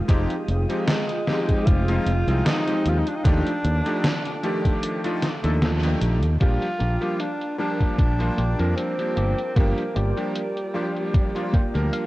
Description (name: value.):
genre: vaporwave.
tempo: 76 BPM.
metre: 4/4.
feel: swing 54% on 16ths.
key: Bb mixolydian.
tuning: A4 = 440 Hz.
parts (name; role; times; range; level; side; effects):
lush unison pad; sustained chords; 0.0-12.1 s; Ab3 to Eb6; -34 LUFS; right 1 dB; chorus.
bright electric grand piano; accompaniment; 0.1-12.1 s; Eb3 to Bb4; -27 LUFS; equal; lush chorus, vintage 12-bit sampler grit.
fingered electric bass; bass; 0.1-11.9 s; F1 to F2; -22 LUFS; equal; none.
electronic kick drum; drums; 0.1-11.7 s; none; -20 LUFS; equal; overdrive, vintage 12-bit sampler grit.
gated 80s digital drum machine; drums; 0.1-12.1 s; crash cymbal, hi-hat, snare drum; -28 LUFS; equal; gated reverb, gated reverb snare, low-pass filter on hats, vintage 12-bit sampler grit, low-pass filter on snare, low-pass filter on cymbals, low-pass filter on room.
breathy tenor saxophone; melody; 0.9-12.1 s; G3 to F4; -29 LUFS; equal; tape echo.
clean electric guitar; riff; 6.8-12.1 s; Bb3 to G5; -33 LUFS; left 1 dB; wide subtle chorus, low-pass filter.
room: light reverb.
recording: worn, warbling old tape, cassette tape, warbly pitch drift.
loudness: -20 LUFS.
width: side -18 dB against mid.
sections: 0.0-6.4 A section; 6.4-12.1 B section.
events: kick drops out 4.8-6.4; band accent 5.6-6.0; filter sweep on clean electric guitar 6.4-12.1; clean electric guitar fill 11.1-12.1.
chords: 0.0 Fm9; 3.2 Ebmaj9#11; 6.4 Bb6.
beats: | 0.09 0.88 1.67 2.46 | 3.25 4.04 4.83 5.62 | 6.41 7.20 7.99 8.78 | 9.56 10.35 11.14 11.93.